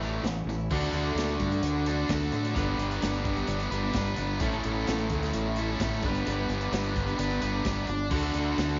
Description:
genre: classic rock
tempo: 130 BPM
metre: 4/4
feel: straight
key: unclear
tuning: A4 = 440 Hz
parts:
  - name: picked steel-string acoustic guitar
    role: accompaniment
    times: 0.0-8.8 s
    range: G2 to B4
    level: -39 LUFS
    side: equal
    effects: none
  - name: raw garage guitar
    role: riff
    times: 0.0-8.8 s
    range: A2 to B4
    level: -36 LUFS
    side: equal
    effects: overdrive
  - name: tight distorted guitar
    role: riff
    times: 0.0-8.8 s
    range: A2 to B4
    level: -35 LUFS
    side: equal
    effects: distortion
  - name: growling fingered electric bass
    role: bass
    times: 0.0-8.8 s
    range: G1 to A2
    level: -34 LUFS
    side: equal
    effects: overdrive
  - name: tambourine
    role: percussion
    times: 0.0-8.7 s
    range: none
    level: -54 LUFS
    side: equal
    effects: none
  - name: vintage drum kit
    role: drums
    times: 0.2-8.8 s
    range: crash cymbal, hi-hat, kick drum, snare drum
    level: -37 LUFS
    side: equal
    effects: none
room: light reverb, small room ambience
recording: nothing above 7.5 kHz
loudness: -29 LUFS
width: mono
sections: 0.7-8.8 A section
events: none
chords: 0.0 A7; 0.7 D; 2.6 G; 4.4 A; 6.0 G; 8.1 D

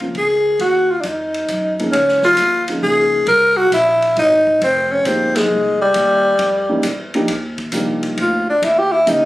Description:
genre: jazz, small-group swing and bop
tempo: 134 BPM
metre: 3/4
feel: swing 68% on 8ths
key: unclear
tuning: A4 = 442 Hz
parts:
  - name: dark upright piano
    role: accompaniment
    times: 0.0-9.3 s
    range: Fb3 to Ab4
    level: -21 LUFS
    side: right 1 dB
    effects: none
  - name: upright bass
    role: bass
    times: 0.0-9.3 s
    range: F1 to Gb2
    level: -29 LUFS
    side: equal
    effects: none
  - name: open jazz drum kit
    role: drums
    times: 0.0-9.2 s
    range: hi-hat, kick drum, ride cymbal, snare drum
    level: -27 LUFS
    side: left 1 dB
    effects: none
  - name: growling tenor saxophone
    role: melody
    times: 0.2-9.3 s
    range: G3 to Bb4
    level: -14 LUFS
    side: equal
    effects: none
room: moderate club reverb, RT60 0.5 s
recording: recorded on a phone in the room, studio reverb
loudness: -13 LUFS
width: side -17 dB against mid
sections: 0.0-7.3 A section; 7.3-9.3 B section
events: tenor saxophone solo 7.3-9.3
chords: 0.0 Bbm9; 0.6 N.C.; 1.9 Db69; 3.3 C7alt; 4.6 Fm11; 5.9 Eb(b9); 7.3 Ebmaj9; 8.6 Eb7b9

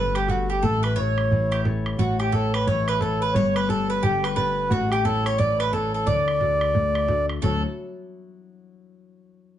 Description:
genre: celtic folk, Celtic hornpipe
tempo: 176 BPM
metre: 4/4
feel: swing 62% on 8ths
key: D major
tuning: A4 = 437 Hz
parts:
  - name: mellow accordion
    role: melody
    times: 0.0-7.6 s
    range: F#4 to D5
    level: -24 LUFS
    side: equal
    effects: none
  - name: mandolin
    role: second line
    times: 0.0-7.6 s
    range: F#4 to D5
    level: -29 LUFS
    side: right 4 dB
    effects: none
  - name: Celtic harp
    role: accompaniment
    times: 0.0-8.3 s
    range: D2 to D5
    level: -28 LUFS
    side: left 5 dB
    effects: none
  - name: upright bass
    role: bass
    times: 0.0-7.6 s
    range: G1 to D2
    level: -28 LUFS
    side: equal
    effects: none
  - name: bodhran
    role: percussion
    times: 0.1-7.6 s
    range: none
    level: -28 LUFS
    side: right 2 dB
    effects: none
room: moderate studio reverb, RT60 0.7 s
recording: nothing above 10.5 kHz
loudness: -20 LUFS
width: side -11 dB against mid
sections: 0.0-7.4 A section; 7.4-8.8 B section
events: none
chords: 0.0 Gadd9; 0.6 A; 3.3 G; 4.7 A; 6.1 D

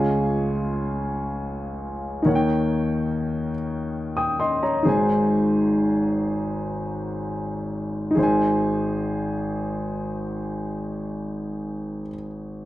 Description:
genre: gospel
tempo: 30-49 BPM (dotted quarters)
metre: 6/8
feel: straight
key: Ab major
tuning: A4 = 440 Hz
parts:
  - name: dark grand piano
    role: solo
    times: 0.0-12.7 s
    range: Ab1 to Eb6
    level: -22 LUFS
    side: equal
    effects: slapback echo
room: little or no reverb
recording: dry, close 1970s-style studio recording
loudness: -22 LUFS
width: side -15 dB against mid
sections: 0.0-8.2 A section; 8.2-12.2 B section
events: slowing down 2.3-8.2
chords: 0.0 Db; 2.3 Eb7; 4.9 Ab

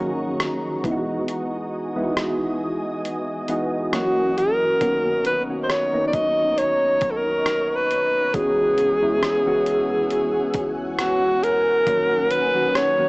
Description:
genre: contemporary R&B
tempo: 68 BPM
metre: 4/4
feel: swing 54% on 16ths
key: B major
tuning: A4 = 440 Hz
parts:
  - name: soft electric-piano-like synth keys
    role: accompaniment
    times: 0.0-13.1 s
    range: D#3 to G#4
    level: -25 LUFS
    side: equal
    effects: chorus, phaser, cassette tape
  - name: ethereal airy pad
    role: sustained chords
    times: 0.0-13.1 s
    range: F#4 to F#6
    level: -33 LUFS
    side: equal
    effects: ensemble chorus, built-in reverb, cassette tape
  - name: warm 808-style bass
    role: bass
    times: 0.0-13.1 s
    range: C#1 to C#2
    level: -40 LUFS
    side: equal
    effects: none
  - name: dusty soul sampler-style drum kit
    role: drums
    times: 0.4-13.0 s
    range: hi-hat, kick drum, rim click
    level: -28 LUFS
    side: equal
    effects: cassette tape
  - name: warm alto saxophone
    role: melody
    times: 3.9-13.1 s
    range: F#4 to D#5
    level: -19 LUFS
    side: equal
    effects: cassette tape
  - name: large celesta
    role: texture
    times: 11.9-13.1 s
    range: C#5 to G#5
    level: -35 LUFS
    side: equal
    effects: none
room: light reverb, digital ambience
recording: home recording on cassette, small speaker sound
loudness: -19 LUFS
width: side -27 dB against mid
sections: 0.0-4.8 A section; 4.8-13.1 B section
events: kick muted 1.3-4.8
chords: 0.0 D#m7; 0.8 Emaj9; 3.9 F#7; 4.8 Bmaj9; 8.3 F#9sus4/C#; 11.9 D#m7

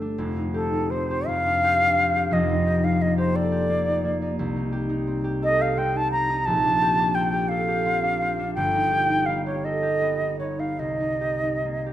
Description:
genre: classical, impressionist duo for flute and harp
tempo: 46-59 BPM (dotted quarters)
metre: 6/8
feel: rubato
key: C dorian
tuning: A4 = 440 Hz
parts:
  - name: concert harp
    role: accompaniment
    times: 0.0-11.9 s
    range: F1 to A4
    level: -25 LUFS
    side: equal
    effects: none
  - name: concert flute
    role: melody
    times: 0.5-11.9 s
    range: A4 to Bb5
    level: -23 LUFS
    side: equal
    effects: none
room: wet recital hall reverb, RT60 1.4 s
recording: dark, warm production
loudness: -21 LUFS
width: side -12 dB against mid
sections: 0.0-11.9 A section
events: none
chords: 0.2 F9; 1.3 Cmadd9/F; 2.3 Ebmaj7/F; 4.4 Cm7; 6.5 Bb69; 8.6 Gaug; 10.8 Cm7

